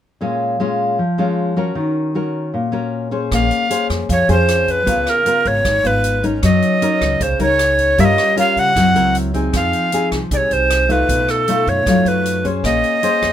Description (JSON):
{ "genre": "bossa nova", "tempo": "154 BPM", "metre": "4/4", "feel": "straight", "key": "Bb minor", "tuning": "A4 = 440 Hz", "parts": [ { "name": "nylon-string guitar", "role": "accompaniment", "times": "0.2-13.3 s", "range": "Ab2 to C5", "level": "-18 LUFS", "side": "left 2 dB", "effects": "none" }, { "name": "breathy bright tenor recorder", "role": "melody", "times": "3.3-13.3 s", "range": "A4 to Gb5", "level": "-16 LUFS", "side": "right 1 dB", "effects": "none" }, { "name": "upright bass", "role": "bass", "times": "3.3-13.3 s", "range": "Ab1 to Db3", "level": "-21 LUFS", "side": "right 1 dB", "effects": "none" }, { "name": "swinging big-band drum kit", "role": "drums", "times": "3.3-13.3 s", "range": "hi-hat, kick drum, rim click", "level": "-26 LUFS", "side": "equal", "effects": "none" } ], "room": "light reverb", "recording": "minimal, uncompressed stereo recording", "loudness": "-14 LUFS", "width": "side -10 dB against mid", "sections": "0.2-3.3 A section; 3.3-13.3 B section", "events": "none", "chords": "0.2 Bbm7; 1.8 Ebm7; 3.3 Bbm9; 4.9 Db13; 6.4 Gb6; 8.0 Gm7b5; 8.8 Gb7#11; 9.5 Fm7; 11.1 B7#11; 12.6 Bbm9" }